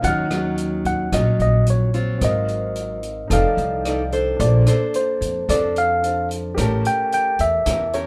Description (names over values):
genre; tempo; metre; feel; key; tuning
bossa nova; 110 BPM; 4/4; straight; Bb major from 4.4 s; A4 = 440 Hz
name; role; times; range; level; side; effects
tine electric piano; melody; 0.0-8.1 s; C5 to G5; -24 LUFS; equal; none
nylon-string guitar; accompaniment; 0.0-8.1 s; Ab2 to D5; -27 LUFS; equal; none
warm grand piano; accompaniment; 0.0-8.1 s; C4 to F6; -33 LUFS; equal; none
upright bass; bass; 0.0-8.1 s; F1 to F2; -24 LUFS; equal; none
open jazz drum kit; drums; 0.0-8.1 s; hi-hat, kick drum, rim click; -32 LUFS; equal; none
room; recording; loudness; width
light reverb; none; -20 LUFS; mono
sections
0.0-4.4 A section; 4.4-8.1 B section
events
none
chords
0.0 Ebm9; 2.2 Ab13; 3.3 F13; 4.4 Bbmaj9; 6.6 A7b9